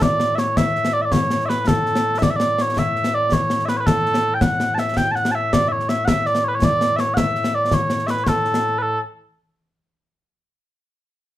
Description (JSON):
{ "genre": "scottish traditional, Scottish pipe music", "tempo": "109 BPM (dotted quarters)", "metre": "6/8", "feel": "straight", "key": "A major", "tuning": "A4 = 440 Hz", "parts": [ { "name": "mellow small bagpipes", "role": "melody", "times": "0.0-9.0 s", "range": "A2 to A5", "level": "-19 LUFS", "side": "equal", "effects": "none" }, { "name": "concert snare drum and concert bass drum", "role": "drums", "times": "0.0-8.6 s", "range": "none", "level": "-21 LUFS", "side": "left 1 dB", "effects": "none" } ], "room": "moderate studio reverb, RT60 0.6 s", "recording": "band playing live in one room", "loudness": "-17 LUFS", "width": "side -14 dB against mid", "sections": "0.0-8.8 A section; 8.8-9.9 B section", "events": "none", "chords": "none" }